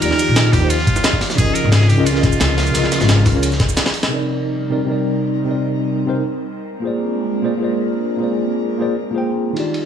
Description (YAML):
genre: liquid drum and bass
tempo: 176 BPM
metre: 4/4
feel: swing 53% on 16ths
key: C minor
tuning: A4 = 440 Hz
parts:
  - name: trumpet with straight mute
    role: melody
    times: 0.0-3.8 s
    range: F4 to Bb4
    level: -22 LUFS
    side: equal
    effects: digital delay
  - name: tine electric piano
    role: accompaniment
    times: 0.0-9.9 s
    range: C3 to G5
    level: -19 LUFS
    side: equal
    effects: medium stereo tremolo, digital delay
  - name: airy breathy pad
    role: sustained chords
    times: 0.0-9.9 s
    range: F3 to D5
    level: -24 LUFS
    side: right 2 dB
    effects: chorus, phaser, sidechain pumping
  - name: upright bass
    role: bass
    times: 0.0-3.8 s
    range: Ab1 to Eb2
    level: -17 LUFS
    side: left 1 dB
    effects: none
  - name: breakbeat sampler-style drum kit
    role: drums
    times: 0.0-4.1 s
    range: cabasa, hi-hat, ride cymbal, snare drum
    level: -20 LUFS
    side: equal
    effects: none
  - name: crunchy breakbeat drum kit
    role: drums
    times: 0.0-4.0, 9.6-9.8 s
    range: ride cymbal, snare drum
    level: -26 LUFS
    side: left 1 dB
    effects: high-pass filter on cymbals, high-pass filter on snare, high-pass filter on room
  - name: electronic kick drum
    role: drums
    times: 0.5-3.7 s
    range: none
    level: -18 LUFS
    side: equal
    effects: none
room: light reverb, studio reverb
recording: none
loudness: -15 LUFS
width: side -8 dB against mid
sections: 0.0-4.1 A section; 4.1-9.9 B section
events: drop 0.0-4.1; drum fill 3.6-4.1; kick drops out 3.8-4.1; band accent 4.0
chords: 0.0 Ebmaj9; 1.4 Db69; 4.1 Cm7; 6.7 Bb9